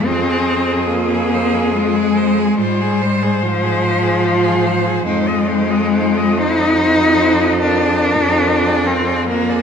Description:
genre	classical, lyrical piece for cello ensemble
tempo	72 BPM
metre	3/4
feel	rubato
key	unclear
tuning	A4 = 445 Hz
part	rich cello	second line	0.0-9.6 s	Eb4 to C5	-24 LUFS	right 8 dB	none
part	rich cello	accompaniment	0.0-9.6 s	F3 to Eb4	-15 LUFS	left 2 dB	none
part	rich cello	melody	0.1-9.6 s	Ab4 to Eb5	-22 LUFS	left 6 dB	none
part	rich cello	bass	0.1-9.6 s	F2 to Ab2	-20 LUFS	right 2 dB	none
room	moderate scoring stage reverb, RT60 1.8 s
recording	none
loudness	-13 LUFS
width	side -7 dB against mid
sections	0.0-9.6 A section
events	none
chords	0.1 Fm; 2.6 Fm/Ab; 5.1 Fm7; 7.6 Bb7/F

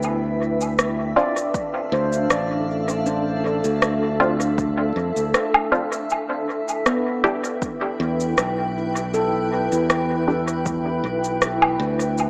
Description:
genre	ambient dub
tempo	79 BPM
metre	4/4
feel	swing 53% on 16ths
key	unclear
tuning	A4 = 440 Hz
part	granular cloud pad	sustained chords	0.0-12.3 s	D4 to G5	-24 LUFS	equal	built-in reverb
part	handpan	arpeggios	0.0-11.2 s	B3 to D5	-27 LUFS	equal	low-pass filter, tape echo
part	modern bright fingered electric bass	bass	0.0-12.3 s	A1 to F2	-24 LUFS	equal	tube saturation
part	electronic cabasa, rim click and woodblock	drums	0.0-12.3 s	none	-23 LUFS	equal	overdrive, dub echo
part	filtered dub chord stab	stabs	1.2-10.4 s	C4 to G4	-24 LUFS	equal	phaser, vintage 12-bit sampler grit, dub echo
part	electronic kick drum	drums	1.5-10.8 s	none	-28 LUFS	equal	overdrive
room	moderate spring reverb, RT60 1.9 s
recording	small speaker sound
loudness	-19 LUFS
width	side -33 dB against mid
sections	0.0-12.3 A section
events	filter sweep on handpan 0.0-12.3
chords	0.0 Dm7; 6.1 Em7

